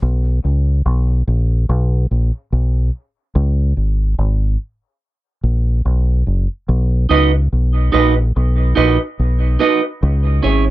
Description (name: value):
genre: reggae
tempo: 72 BPM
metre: 4/4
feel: straight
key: unclear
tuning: A4 = 438 Hz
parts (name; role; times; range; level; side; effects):
- deep dub fingered electric bass; bass; 0.0-10.7 s; F#1 to C#2; -14 LUFS; equal; none
- clean electric guitar; accompaniment; 7.1-10.6 s; C#4 to D#5; -16 LUFS; right 6 dB; dub echo
room: little or no reverb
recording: dry, close 1970s-style studio recording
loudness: -14 LUFS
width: side -16 dB against mid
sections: 0.0-10.7 A section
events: break 0.0-6.7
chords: 0.0 N.C.; 3.4 C#5; 6.7 B; 10.0 C#m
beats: | 0.02 0.85 1.69 2.52 | 3.35 4.18 5.02 5.85 | 6.68 7.52 8.35 9.18 | 10.02